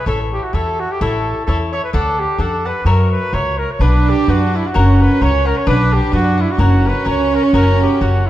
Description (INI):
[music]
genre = mexican folk, mariachi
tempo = 129 BPM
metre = 2/4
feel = swing 55% on 8ths, rubato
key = B harmonic minor from 3.8 s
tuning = A4 = 440 Hz
[part]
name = clear trumpet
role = melody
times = 0.0-8.3 s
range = E4 to C#5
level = -20 LUFS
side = equal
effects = none
[part]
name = cavaquinho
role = accompaniment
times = 0.0-8.3 s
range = D4 to F#5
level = -22 LUFS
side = left 2 dB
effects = none
[part]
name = upright bass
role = bass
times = 0.1-8.3 s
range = F#1 to F#2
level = -16 LUFS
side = equal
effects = none
[part]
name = clear studio violin section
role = second line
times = 3.8-8.3 s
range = C#4 to D4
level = -17 LUFS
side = right 3 dB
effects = none
[sound]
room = moderate recital hall reverb, RT60 1.7 s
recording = dark, warm production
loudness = -13 LUFS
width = side -13 dB against mid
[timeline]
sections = 0.0-3.8 A section; 3.8-8.3 B section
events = none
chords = 0.1 A; 1.9 D; 2.9 F#7; 3.8 Bm; 4.7 F#; 5.7 Bm; 6.6 F#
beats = | 0.07 0.54 | 1.01 1.48 | 1.94 2.40 | 2.86 3.33 | 3.81 4.28 | 4.75 5.21 | 5.67 6.13 | 6.59 7.05 | 7.53 8.00